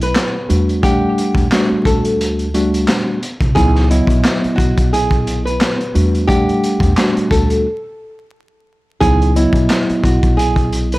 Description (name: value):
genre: hip hop, boom-bap hip-hop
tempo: 88 BPM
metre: 4/4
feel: swing 56% on 16ths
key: unclear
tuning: A4 = 440 Hz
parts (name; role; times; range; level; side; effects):
- nylon-string guitar; melody; 0.0-11.0 s; E4 to B4; -20 LUFS; equal; high-pass filter, low-pass filter, tape echo
- mellow tine electric piano; accompaniment; 0.0-11.0 s; F#3 to F#5; -17 LUFS; equal; medium stereo tremolo, high-pass filter, low-pass filter
- upright bass; bass; 0.0-11.0 s; B1 to E2; -18 LUFS; equal; none
- crunchy breakbeat drum kit; drums; 0.0-11.0 s; handclaps, hi-hat, kick drum, snare drum; -17 LUFS; equal; none
room: little or no reverb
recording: dry, gritty hardware recording, vinyl crackle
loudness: -12 LUFS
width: side -19 dB against mid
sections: 0.0-11.0 A section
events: break 7.7-9.0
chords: 0.5 Em11; 3.6 C#m11; 5.9 Em11; 9.0 C#m11